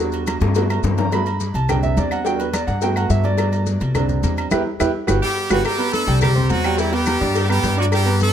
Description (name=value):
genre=latin, salsa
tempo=212 BPM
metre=4/4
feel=straight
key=G major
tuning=A4 = 436 Hz
part: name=clear concert grand piano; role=accompaniment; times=0.0-8.3 s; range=G3 to D6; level=-22 LUFS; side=right 4 dB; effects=none
part: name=upright bass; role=bass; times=0.0-8.3 s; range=G1 to G2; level=-20 LUFS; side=left 1 dB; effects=none
part: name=agogo bells and timbales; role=percussion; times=0.1-8.2 s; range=none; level=-30 LUFS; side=right 6 dB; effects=none
part: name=congas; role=percussion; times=0.1-8.3 s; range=none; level=-28 LUFS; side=left 2 dB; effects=none
part: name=maracas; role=percussion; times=0.1-8.3 s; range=none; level=-36 LUFS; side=left 12 dB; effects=none
part: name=claves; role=percussion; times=0.3-8.1 s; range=none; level=-31 LUFS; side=left 4 dB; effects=none
part: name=cowbell and bongos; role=percussion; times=0.3-8.3 s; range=none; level=-27 LUFS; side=left 6 dB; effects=none
part: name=brilliant horn section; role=melody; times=5.2-8.3 s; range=E3 to A4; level=-21 LUFS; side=equal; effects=none
room=light reverb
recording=close, detailed microphones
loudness=-16 LUFS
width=side -9 dB against mid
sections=0.0-5.7 A section; 5.7-8.3 B section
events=grand piano solo 0.0-5.7; drum fill 0.4-1.1, 4.8-5.7; band accent 4.5-5.7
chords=0.0 Em7; 0.6 Gmaj7; 1.7 Csus2; 2.3 Em7; 2.8 Gmaj7; 4.0 Csus2; 4.5 Em; 5.1 Gmaj7; 5.7 G; 6.2 C5; 6.8 Em7; 7.4 G